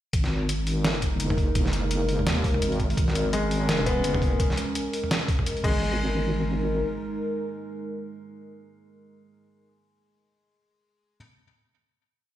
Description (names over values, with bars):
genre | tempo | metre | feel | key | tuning
half-time drum and bass | 169 BPM | 4/4 | swing 57% on 16ths, half-time | unclear | A4 = 440 Hz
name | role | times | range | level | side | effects
dark analog pad | sustained chords | 0.6-9.4 s | G#3 to A#4 | -30 LUFS | right 1 dB | chorus, sidechain pumping
deep soft wobble bass | bass | 0.1-6.8 s | F#1 to D#2 | -27 LUFS | equal | chorus
boom bap sampler-style drum kit | drums | 0.1-5.7 s | crash cymbal, hi-hat, snare drum, toms | -29 LUFS | equal | studio reverb
electronic kick drum | drums | 0.1-5.7 s | none | -26 LUFS | equal | studio reverb
felt-muted upright piano | arpeggios | 3.3-6.0 s | G#3 to B3 | -31 LUFS | left 2 dB | vintage 12-bit sampler grit, ping-pong delay
room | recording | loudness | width
light reverb, digital ambience | played on a big sound system in a bare room, stone room reverb | -23 LUFS | side -12 dB against mid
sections
0.1-5.8 drop; 5.8-8.7 final hit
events
drop 0.1-5.8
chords
0.1 G#sus2